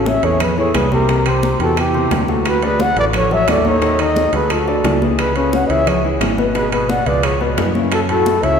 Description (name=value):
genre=Afro-Cuban jazz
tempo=176 BPM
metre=4/4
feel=straight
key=unclear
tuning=A4 = 438 Hz
part: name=breathy trumpet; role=melody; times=0.0-8.6 s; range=G4 to F#5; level=-18 LUFS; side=left 1 dB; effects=none
part: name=reedy bansuri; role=second line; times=0.0-8.6 s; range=E4 to D5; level=-23 LUFS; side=right 5 dB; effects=none
part: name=warm grand piano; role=accompaniment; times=0.0-8.6 s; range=A2 to D#5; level=-21 LUFS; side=left 4 dB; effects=none
part: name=fingered electric bass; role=bass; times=0.0-8.6 s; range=G#1 to F#2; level=-20 LUFS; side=right 1 dB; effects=none
part: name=bongos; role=percussion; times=0.1-8.4 s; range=none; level=-27 LUFS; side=left 5 dB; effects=none
part: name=congas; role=percussion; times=0.1-8.6 s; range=none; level=-24 LUFS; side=left 2 dB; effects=none
part: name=timbales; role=percussion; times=0.1-8.6 s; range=none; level=-25 LUFS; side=right 5 dB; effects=none
part: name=claves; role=percussion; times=0.4-8.1 s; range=none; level=-33 LUFS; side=right 5 dB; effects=none
room=wet church reverb, RT60 2.8 s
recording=recorded in a church or concert hall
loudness=-13 LUFS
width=side -7 dB against mid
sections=0.0-8.6 A section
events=none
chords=0.0 Amaj7; 1.1 Cadd9; 2.5 D; 3.8 D#dim; 4.5 Dadd9; 5.2 C#m7; 6.6 G#dim7; 7.2 C#7; 7.9 F#m7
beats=0.07 0.41 0.75 | 1.09 1.43 1.77 2.11 | 2.46 2.80 3.14 3.48 | 3.82 4.16 4.50 4.84 | 5.18 5.53 5.87 6.21 | 6.55 6.89 7.24 7.58 | 7.92 8.26